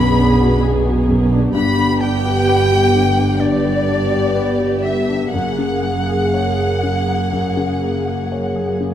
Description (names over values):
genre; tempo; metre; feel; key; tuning
cinematic, emotional film score for orchestra; 60-67 BPM; 4/4; rubato; unclear; A4 = 438 Hz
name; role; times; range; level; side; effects
rich chamber violin section; melody; 0.0-8.8 s; D5 to B5; -25 LUFS; left 2 dB; none
bright concert flute; second line; 0.0-8.8 s; D5 to B5; -26 LUFS; left 1 dB; none
warm studio violin section; second line; 0.0-8.8 s; D5 to B5; -28 LUFS; left 1 dB; none
clear grand piano; accompaniment; 0.0-8.9 s; B1 to C#5; -22 LUFS; left 4 dB; none
dark studio viola section; accompaniment; 0.0-8.9 s; A#3 to G#4; -21 LUFS; right 2 dB; none
mellow French horn section; sustained chords; 0.0-8.9 s; A#3 to G#4; -23 LUFS; left 3 dB; none
warm studio cello section; bass; 0.0-8.9 s; F#2 to B2; -22 LUFS; right 2 dB; none
warm studio double bass section; bass; 0.0-8.9 s; F#1 to B1; -22 LUFS; right 2 dB; none
room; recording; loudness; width
light reverb; none; -14 LUFS; side -10 dB against mid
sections
0.0-8.9 A section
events
none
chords
0.0 Bm6; 1.5 G; 5.3 F#add9